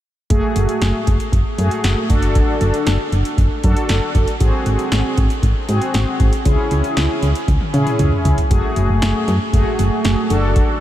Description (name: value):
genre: synth-pop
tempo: 117 BPM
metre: 4/4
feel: straight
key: F# minor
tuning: A4 = 445 Hz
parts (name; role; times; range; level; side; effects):
- mellow synth brass; accompaniment; 0.3-10.8 s; A3 to A4; -20 LUFS; equal; chorus
- solid FM bass; bass; 0.3-10.6 s; F#1 to C#3; -17 LUFS; equal; none
- electro analog drum machine; drums; 0.3-10.7 s; hi-hat, kick drum, snare drum, toms; -19 LUFS; equal; none
room: moderate huge ambient reverb, RT60 7.7 s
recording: dreamy mix soaked in reverb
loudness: -14 LUFS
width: side -13 dB against mid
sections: 0.3-8.5 A section; 8.5-10.8 B section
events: drum fill 7.5-8.5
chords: 0.3 F#madd9; 2.1 D/F#; 4.4 G#7; 6.5 C#m; 8.5 F#madd9; 10.3 D/F#